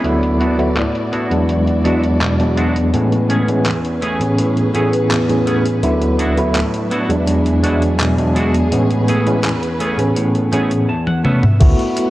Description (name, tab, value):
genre	vaporwave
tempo	83 BPM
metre	4/4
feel	straight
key	A major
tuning	A4 = 440 Hz
part	overdriven tine electric piano	accompaniment	0.0-12.1 s	D2 to G#4	-16 LUFS	equal	medium tremolo, wide subtle chorus, tape echo
part	dark studio string section	sustained chords	0.0-12.1 s	F#3 to F#5	-24 LUFS	left 1 dB	none
part	semi-hollow electric guitar	riff	0.0-12.0 s	E2 to A5	-21 LUFS	right 1 dB	analog chorus, low-pass filter, tape echo
part	detuned 8-bit digital drum machine	drums	0.0-12.1 s	crash cymbal, handclaps, hi-hat, toms	-21 LUFS	equal	low-pass filter on hats, low-pass filter on snare, low-pass filter on toms, low-pass filter on cymbals
part	fingered electric bass	bass	11.6-11.7 s	D2	-15 LUFS	equal	none
part	electronic kick drum	drums	11.6-11.8 s	none	-11 LUFS	equal	none
room	moderate plate reverb, RT60 2.9 s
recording	cassette tape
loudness	-13 LUFS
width	side -16 dB against mid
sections	0.0-11.6 A section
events	filter sweep on drum 0.0-11.6; clean electric guitar fill 10.5-11.6; drum fill 11.1-11.6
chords	0.0 D69; 1.5 E9; 2.9 Amaj9; 5.8 D69; 7.3 E9; 8.7 Amaj9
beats	| 0.04 0.77 1.49 2.21 | 2.94 3.66 4.38 5.10 | 5.83 6.55 7.27 8.00 | 8.72 9.44 10.16 10.89 | 11.61